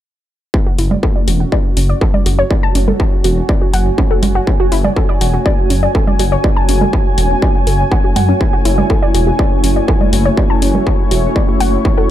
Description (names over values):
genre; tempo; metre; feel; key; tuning
melodic techno; 122 BPM; 4/4; straight; F# minor; A4 = 442 Hz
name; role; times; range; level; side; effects
warm analog pad; sustained chords; 0.9-12.1 s; A3 to F#4; -22 LUFS; equal; chorus, sidechain pumping
electronic kick drum; drums; 0.5-12.0 s; none; -14 LUFS; equal; distortion
ethereal airy pad; texture; 1.6-12.1 s; F#4 to C#6; -21 LUFS; equal; ensemble chorus, built-in reverb, sidechain pumping
warbly dusty pluck; arpeggios; 0.7-12.1 s; C#4 to A5; -20 LUFS; left 1 dB; chorus, sidechain pumping, digital delay
dark detuned saw bass; bass; 0.8-11.8 s; E1 to F#2; -15 LUFS; equal; sidechain pumping
electronic hi-hat and congas; drums; 0.8-11.7 s; none; -20 LUFS; right 3 dB; overdrive
room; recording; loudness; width
digital ambience; dark, warm production; -11 LUFS; side -12 dB against mid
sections
0.5-12.1 A section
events
none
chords
0.5 F#m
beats
| 0.54 1.03 1.52 2.01 | 2.51 3.00 3.49 3.98 | 4.47 4.96 5.46 5.95 | 6.44 6.93 7.42 7.92 | 8.41 8.90 9.39 9.88 | 10.38 10.87 11.36 11.85